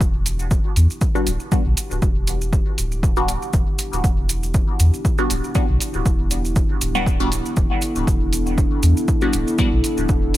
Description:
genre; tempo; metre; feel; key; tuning
dub techno; 119 BPM; 4/4; swing 55% on 16ths; E minor; A4 = 436 Hz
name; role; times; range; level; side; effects
dark analog pad; sustained chords; 0.0-10.4 s; B3 to A4; -27 LUFS; equal; wide subtle chorus, sidechain pumping
soft dub sub bass; bass; 0.0-10.4 s; D1 to E2; -21 LUFS; equal; sidechain pumping
electronic kick drum; drums; 0.0-10.2 s; none; -19 LUFS; equal; none
maracas; percussion; 0.0-10.4 s; none; -29 LUFS; right 2 dB; none
electronic hi-hat; drums; 0.3-10.4 s; none; -29 LUFS; equal; none
filtered dub chord stab; stabs; 1.2-9.7 s; G3 to F#4; -25 LUFS; equal; phaser, sidechain pumping, dub echo
room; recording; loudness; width
little or no reverb; none; -17 LUFS; side -15 dB against mid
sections
0.0-10.4 A section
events
none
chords
0.0 Em7

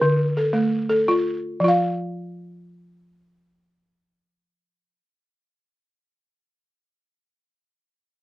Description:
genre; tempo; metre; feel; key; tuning
west african traditional; 84 BPM; 4/4; straight; unclear; A4 = 441 Hz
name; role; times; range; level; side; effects
balafon; solo; 0.0-6.0 s; D3 to F5; -19 LUFS; equal; none
room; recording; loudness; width
little or no reverb; close, detailed microphones; -19 LUFS; side -17 dB against mid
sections
0.0-1.6 A section; 1.6-4.5 B section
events
none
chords
0.0 Dm; 1.6 N.C.

